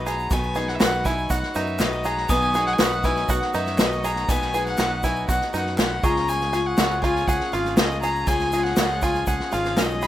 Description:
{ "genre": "indie folk with a building arrangement", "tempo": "120 BPM", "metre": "4/4", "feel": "straight", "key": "B major", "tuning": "A4 = 440 Hz", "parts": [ { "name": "dark fiddle", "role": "melody", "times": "0.0-10.1 s", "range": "D#5 to B5", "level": "-26 LUFS", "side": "left 2 dB", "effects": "none" }, { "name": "glockenspiel with rubber mallets", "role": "second line", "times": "0.0-10.1 s", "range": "B5 to D#6", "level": "-32 LUFS", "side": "right 1 dB", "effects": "none" }, { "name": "picked steel-string acoustic guitar", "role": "accompaniment", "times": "0.0-10.1 s", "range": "B2 to B4", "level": "-28 LUFS", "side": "left 3 dB", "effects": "none" }, { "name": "clear brass ensemble", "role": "sustained chords", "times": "0.0-10.1 s", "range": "B2 to G#4", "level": "-34 LUFS", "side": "right 1 dB", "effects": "none" }, { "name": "bluegrass banjo", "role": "arpeggios", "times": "0.0-10.1 s", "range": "D#4 to G#4", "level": "-29 LUFS", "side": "right 4 dB", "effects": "none" }, { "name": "fingered electric bass", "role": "bass", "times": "0.0-10.1 s", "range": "G#1 to F#2", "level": "-30 LUFS", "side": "right 1 dB", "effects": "none" }, { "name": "unplugged drum kit", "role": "drums", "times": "0.1-10.1 s", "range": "kick drum, snare drum", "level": "-24 LUFS", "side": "equal", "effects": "none" }, { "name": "egg shaker", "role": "percussion", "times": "0.1-10.1 s", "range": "none", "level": "-39 LUFS", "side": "right 4 dB", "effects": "none" }, { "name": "group handclap", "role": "percussion", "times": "0.8-9.9 s", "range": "none", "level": "-34 LUFS", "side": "equal", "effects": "none" } ], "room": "studio ambience", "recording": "rough home demo mix", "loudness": "-20 LUFS", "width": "side -12 dB against mid", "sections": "0.0-10.1 A section", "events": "none", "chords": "0.0 B; 6.0 C#" }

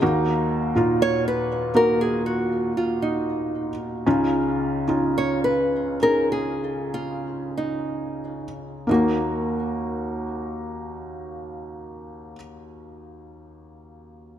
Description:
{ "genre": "pop", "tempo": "44-61 BPM", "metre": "4/4", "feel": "straight", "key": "Eb minor", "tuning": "A4 = 440 Hz", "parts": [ { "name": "felt-muted upright piano", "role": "accompaniment", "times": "0.0-14.4 s", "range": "Db2 to Ab4", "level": "-24 LUFS", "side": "equal", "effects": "none" }, { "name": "picked steel-string acoustic guitar", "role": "arpeggios", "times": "0.0-0.6 s", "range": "Db3 to Ab4", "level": "-34 LUFS", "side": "left 3 dB", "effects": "none" }, { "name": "nylon-string guitar", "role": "melody", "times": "1.0-12.4 s", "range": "Bb3 to Db5", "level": "-24 LUFS", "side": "equal", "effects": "none" } ], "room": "moderate concert hall reverb, RT60 2.1 s", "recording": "none", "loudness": "-21 LUFS", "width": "side -10 dB against mid", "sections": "0.0-8.9 A section; 8.9-14.3 B section", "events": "slowing down 0.0-8.9", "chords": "0.0 Ebm; 4.1 Dbadd9; 8.9 Ebm" }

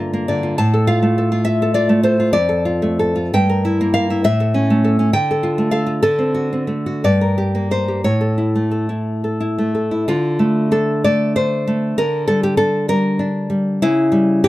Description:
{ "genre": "romantic piece for solo classical guitar", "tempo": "56-70 BPM (dotted quarters)", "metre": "6/8", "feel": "rubato", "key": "D minor", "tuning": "A4 = 439 Hz", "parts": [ { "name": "nylon-string guitar", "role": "solo", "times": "0.0-14.5 s", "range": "F2 to A5", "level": "-15 LUFS", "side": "equal", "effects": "none" } ], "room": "moderate studio reverb, RT60 0.5 s", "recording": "dark, warm production", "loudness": "-15 LUFS", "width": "side -16 dB against mid", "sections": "0.0-10.1 A section; 10.1-14.5 B section", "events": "none", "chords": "0.0 Gm7; 0.6 F/A; 2.4 Dm/F; 3.4 Edim/G; 4.3 A; 5.1 Dm; 6.0 D7; 7.0 Gm; 8.1 A; 10.1 Dm; 12.0 Gmadd9/D; 13.8 C#dim" }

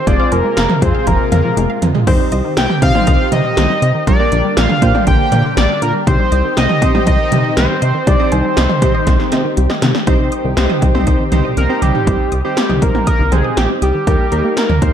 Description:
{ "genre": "synth-pop", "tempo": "120 BPM", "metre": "4/4", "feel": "straight", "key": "C minor", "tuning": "A4 = 438 Hz", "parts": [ { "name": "fat analog lead", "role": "melody", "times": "0.0-14.9 s", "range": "G4 to G5", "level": "-18 LUFS", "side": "equal", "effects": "chorus, digital delay" }, { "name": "lush unison pad", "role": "sustained chords", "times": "0.0-12.1 s", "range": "C3 to G4", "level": "-23 LUFS", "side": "equal", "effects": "chorus, phaser" }, { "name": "wide unison pluck", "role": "arpeggios", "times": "0.0-14.9 s", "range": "D3 to Eb6", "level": "-23 LUFS", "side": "left 1 dB", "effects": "digital delay" }, { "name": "warm analog keys", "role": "accompaniment", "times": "0.1-14.9 s", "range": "Bb3 to C5", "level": "-20 LUFS", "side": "equal", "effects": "chorus" }, { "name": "chorused synth bass", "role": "bass", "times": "0.1-14.9 s", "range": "F1 to C3", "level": "-16 LUFS", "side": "equal", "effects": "none" }, { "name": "80s electronic pad drums", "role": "drums", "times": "0.1-14.9 s", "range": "cowbell, crash cymbal, hi-hat, kick drum, snare drum, toms", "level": "-16 LUFS", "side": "equal", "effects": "gated reverb on snare and toms" } ], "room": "moderate digital room reverb, RT60 1.1 s, digital ambience", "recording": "dark, warm production", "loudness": "-11 LUFS", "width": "side -9 dB against mid", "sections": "0.0-10.1 A section; 10.1-12.1 B section; 12.1-14.9 C section", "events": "drum fill 1.6-2.1, 9.1-10.1, 11.6-12.1", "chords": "0.1 Fm; 2.1 Cm; 4.1 Gm/Bb; 6.1 Cm; 14.1 Eb" }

